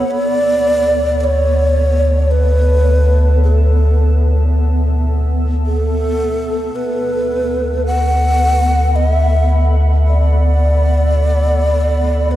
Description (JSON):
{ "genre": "ambient", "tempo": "54 BPM", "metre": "3/4", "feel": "straight", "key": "D major", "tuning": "A4 = 440 Hz", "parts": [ { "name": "breathy mellow long shakuhachi", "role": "melody", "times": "0.0-12.4 s", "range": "A4 to F#5", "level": "-17 LUFS", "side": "equal", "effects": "tape echo" }, { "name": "granular cloud pad", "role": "sustained chords", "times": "0.0-12.4 s", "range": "B3 to B5", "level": "-23 LUFS", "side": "equal", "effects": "built-in reverb" }, { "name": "warm sub bass", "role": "bass", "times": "0.0-12.4 s", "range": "D2", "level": "-13 LUFS", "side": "equal", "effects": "none" } ], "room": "moderate huge ambient reverb, RT60 8.3 s", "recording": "dark, warm production", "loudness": "-12 LUFS", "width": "side -14 dB against mid", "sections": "0.1-12.4 A section", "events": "fade-in on ambient pad 0.1-12.4", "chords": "0.1 Dsus2", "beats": "| 0.09 1.20 2.31 | 3.42 4.54 5.65 | 6.76 7.87 8.98 | 10.09 11.20 12.31" }